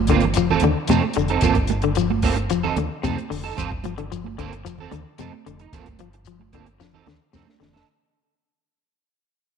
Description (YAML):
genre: afrobeat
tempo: 112 BPM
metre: 4/4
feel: straight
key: unclear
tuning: A4 = 440 Hz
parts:
  - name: deep dub fingered electric bass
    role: bass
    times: 0.0-7.8 s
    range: F1 to F2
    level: -26 LUFS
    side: equal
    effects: none
  - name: semi-hollow electric guitar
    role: arpeggios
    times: 0.1-7.7 s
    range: C3 to F3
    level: -25 LUFS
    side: left 10 dB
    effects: spring reverb
  - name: electric guitar at the edge of break-up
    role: stabs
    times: 0.1-7.9 s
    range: A3 to A4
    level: -24 LUFS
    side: right 10 dB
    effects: ensemble chorus
  - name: compact cocktail drum kit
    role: drums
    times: 0.1-7.9 s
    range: hi-hat, kick drum, snare drum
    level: -26 LUFS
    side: equal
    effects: none
  - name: shekere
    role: percussion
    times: 0.1-7.7 s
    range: none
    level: -30 LUFS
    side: left 4 dB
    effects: none
  - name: congas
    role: percussion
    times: 0.2-7.9 s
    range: none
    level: -27 LUFS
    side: right 12 dB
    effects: none
room: moderate echo chamber reverb, RT60 1.8 s, small room ambience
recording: 1960s-style stereo with parts hard left and right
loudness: -19 LUFS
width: side -7 dB against mid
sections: 0.0-7.9 A section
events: fade-out 0.0-7.9; drum fill 6.8-7.9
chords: 0.4 F7; 1.4 Gm11; 2.5 F7; 3.6 Gm11; 4.6 F7; 5.7 Gm11; 6.8 F7